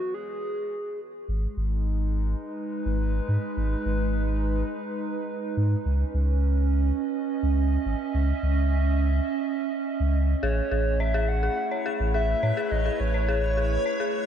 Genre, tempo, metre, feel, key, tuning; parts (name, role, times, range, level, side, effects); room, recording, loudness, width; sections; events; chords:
IDM; 105 BPM; 4/4; straight; G# phrygian; A4 = 440 Hz
warbly nostalgic lead; melody; 0.0-1.0, 10.4-14.3 s; F#4 to F#5; -30 LUFS; equal; chorus, digital delay
warbly tape-like pad; sustained chords; 1.3-14.3 s; G#3 to E5; -29 LUFS; right 4 dB; chorus, built-in reverb
warm sub bass; bass; 1.3-13.8 s; G#1 to A2; -24 LUFS; equal
dark detuned synth bell; arpeggios; 10.4-14.1 s; G#4 to C#5; -30 LUFS; left 4 dB; chorus, vintage 12-bit sampler grit, ping-pong delay
backwards swelling texture; texture; 11.7-14.3 s; E4 to C#5; -40 LUFS; left 1 dB; built-in reverb
light reverb; dark, warm production; -24 LUFS; side -9 dB against mid
0.0-1.3 A section; 1.3-14.3 B section
break 0.0-1.3
0.0 N.C.; 1.3 G#m; 5.9 C#m7; 10.4 Amaj7